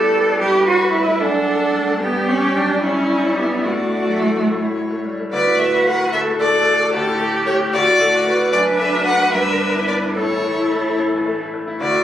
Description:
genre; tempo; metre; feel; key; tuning
quick classical-period movement for piano quartet; 74 BPM (dotted quarters); 6/8; rubato; D major; A4 = 439 Hz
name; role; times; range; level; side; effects
warm violin; melody; 0.0-12.0 s; A4 to G5; -21 LUFS; left 2 dB; none
warm cello; second line; 0.0-12.0 s; A3 to B4; -19 LUFS; right 2 dB; none
bright grand piano; accompaniment; 0.0-12.0 s; D2 to D5; -23 LUFS; left 2 dB; none
warm viola; accompaniment; 0.0-12.0 s; D4 to B4; -23 LUFS; equal; none
room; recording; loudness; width
wet recital hall reverb, RT60 1.4 s; recorded on a phone in the room, club reverb, compression; -15 LUFS; side -11 dB against mid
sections
0.0-5.3 A section; 5.3-12.0 B section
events
none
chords
0.4 A7/G; 1.2 D/F#; 2.0 G5; 3.7 D/A; 4.5 A; 5.3 D; 6.9 Dsus4; 7.7 D; 8.5 D/F#; 9.3 Em7/G; 10.2 A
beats
| 0.41 1.22 | 2.02 2.83 | 3.65 4.49 | 5.33 6.13 | 6.94 7.73 | 8.53 9.34 | 10.17 10.99 | 11.82

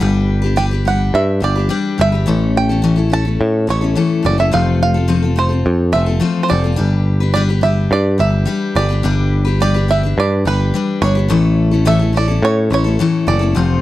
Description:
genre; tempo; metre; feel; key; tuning
folk rock and heartland rock; 106 BPM; 4/4; straight; A mixolydian; A4 = 440 Hz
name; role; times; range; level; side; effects
bluegrass banjo; melody; 0.0-13.8 s; B4 to A5; -19 LUFS; right 4 dB; none
picked steel-string acoustic guitar; accompaniment; 0.0-13.8 s; A2 to B4; -18 LUFS; left 4 dB; none
picked electric bass; bass; 0.0-13.8 s; F1 to A2; -15 LUFS; equal; none
room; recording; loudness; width
little or no reverb; dry, close 1970s-style studio recording; -13 LUFS; side -15 dB against mid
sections
0.0-13.8 A section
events
none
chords
0.0 G; 2.3 A; 4.5 F; 6.8 G; 11.3 A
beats
| 0.01 0.58 1.14 1.71 | 2.27 2.84 3.40 3.97 | 4.53 5.10 5.66 6.23 | 6.79 7.35 7.92 8.48 | 9.04 9.61 10.17 10.73 | 11.30 11.86 12.42 12.98 | 13.55

